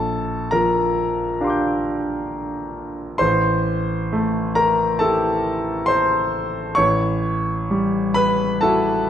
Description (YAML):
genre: classical, impressionist solo piano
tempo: 67 BPM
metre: 4/4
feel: rubato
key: unclear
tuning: A4 = 441 Hz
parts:
  - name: clear concert grand piano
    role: solo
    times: 0.0-9.1 s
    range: A1 to G6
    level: -18 LUFS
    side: equal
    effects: none
room: moderate scoring stage reverb, RT60 1.8 s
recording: none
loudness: -18 LUFS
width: side -10 dB against mid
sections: 0.0-9.1 A section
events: none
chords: 0.0 Bb69; 3.2 Am7; 6.8 Emadd9/A